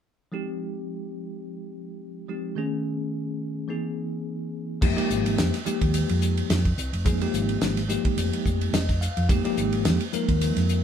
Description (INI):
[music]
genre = electric jazz fusion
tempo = 107 BPM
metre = 4/4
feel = swing 55% on 16ths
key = F minor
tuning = A4 = 441 Hz
[part]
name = bell-like tine electric piano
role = accompaniment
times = 0.3-10.8 s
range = D#3 to F5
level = -27 LUFS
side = left 1 dB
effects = medium stereo tremolo
[part]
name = woody fretless electric bass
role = bass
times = 4.8-10.8 s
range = F1 to F2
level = -25 LUFS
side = equal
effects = none
[part]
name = damped 70s drum kit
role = drums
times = 4.8-10.8 s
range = crash cymbal, hi-hat, kick drum, ride cymbal, snare drum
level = -27 LUFS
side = equal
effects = none
[sound]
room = moderate studio reverb, RT60 0.6 s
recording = band playing live in one room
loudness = -23 LUFS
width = side -8 dB against mid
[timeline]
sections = 0.3-4.8 A section; 4.8-10.8 B section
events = tine electric piano fill 8.5-9.3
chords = 0.3 Fm9; 2.6 B13; 3.7 C7alt; 4.8 Fm11